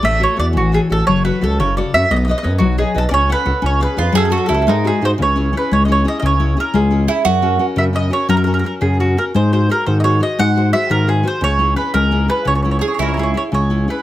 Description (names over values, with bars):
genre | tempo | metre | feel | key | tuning
italian folk, Italian serenade | 116 BPM (dotted quarters) | 6/8 | rubato | F# minor, C# dorian from 5.2 s | A4 = 440 Hz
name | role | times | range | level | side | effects
mandolin | melody | 0.0-14.0 s | F#4 to F#5 | -18 LUFS | right 2 dB | none
nylon-string guitar | accompaniment | 0.0-14.0 s | C#3 to F#5 | -19 LUFS | left 4 dB | none
smooth gliding synth bass | bass | 0.0-13.9 s | F#1 to G#2 | -17 LUFS | equal | none
mandolin | second line | 4.0-7.7, 12.8-13.5 s | D#4 to G#4 | -18 LUFS | right 7 dB | none
room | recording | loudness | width
light reverb | close, detailed microphones | -13 LUFS | side -14 dB against mid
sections
0.0-5.2 A section; 5.2-13.5 B section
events
none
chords
0.0 A6; 1.1 F#m; 2.1 Badd9; 3.1 F#m/C#; 3.6 C#; 4.2 F#madd9; 4.7 G#7; 5.2 C#m; 7.3 F#; 9.4 G#7; 11.4 C#m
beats
| 0.03 0.55 | 1.08 1.60 | 2.11 2.62 | 3.12 3.64 | 4.16 4.68 | 5.20 5.72 | 6.24 6.74 | 7.25 7.77 | 8.29 8.82 | 9.35 9.88 | 10.39 10.91 | 11.42 11.94 | 12.47 12.99 | 13.53